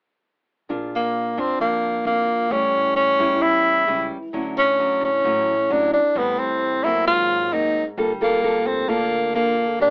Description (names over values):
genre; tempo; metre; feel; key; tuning
bossa nova; 132 BPM; 4/4; straight; unclear; A4 = 440 Hz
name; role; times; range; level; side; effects
nylon-string guitar; accompaniment; 0.7-9.9 s; Ab2 to A4; -28 LUFS; equal; none
upright bass; bass; 0.7-9.9 s; E1 to F2; -40 LUFS; equal; none
breathy tenor saxophone; melody; 1.0-9.9 s; Bb3 to F4; -21 LUFS; equal; none
room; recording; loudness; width
light reverb; AM radio sound; -21 LUFS; mono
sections
0.7-9.9 A section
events
none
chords
0.7 Bb; 2.5 A7; 4.3 Dmaj9; 6.2 Am7; 7.1 Ab9; 8.0 Gm9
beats
| 0.69 1.14 1.60 2.05 | 2.51 2.96 3.42 3.88 | 4.33 4.79 5.24 5.70 | 6.15 6.61 7.06 7.52 | 7.97 8.43 8.88 9.34 | 9.80